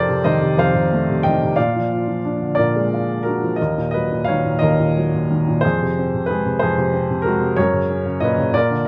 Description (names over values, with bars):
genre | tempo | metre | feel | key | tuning
classical, lyrical solo piano | 58-63 BPM (dotted quarters) | 6/8 | rubato | unclear | A4 = 441 Hz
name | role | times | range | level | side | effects
warm upright piano | solo | 0.0-8.9 s | Eb2 to G5 | -19 LUFS | equal | none
room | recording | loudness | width
light reverb | close, detailed microphones | -19 LUFS | mono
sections
0.0-8.9 A section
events
none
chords
0.0 F7; 1.6 Bb7; 3.6 Ebm; 5.6 Fm; 7.6 Gb